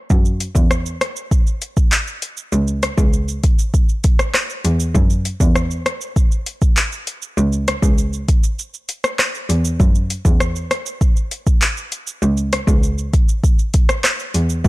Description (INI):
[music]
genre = dancehall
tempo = 99 BPM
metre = 4/4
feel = straight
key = C# minor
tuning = A4 = 440 Hz
[part]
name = rich cello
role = bass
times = 0.1-14.7 s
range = C#2 to F#2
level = -18 LUFS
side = equal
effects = none
[part]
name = afro-pop drum kit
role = drums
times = 0.1-14.7 s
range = handclaps, hi-hat, kick drum, rim click, shaker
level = -16 LUFS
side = equal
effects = none
[sound]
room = digital ambience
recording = blown-out, overdriven recording, overdrive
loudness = -15 LUFS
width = side -19 dB against mid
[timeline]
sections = 0.1-14.7 A section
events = break 8.6-9.8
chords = none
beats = | 0.10 0.71 1.31 1.92 | 2.53 3.13 3.74 4.34 | 4.95 5.56 6.16 6.77 | 7.38 7.98 8.59 9.19 | 9.80 10.40 11.01 11.62 | 12.22 12.83 13.44 14.04 | 14.65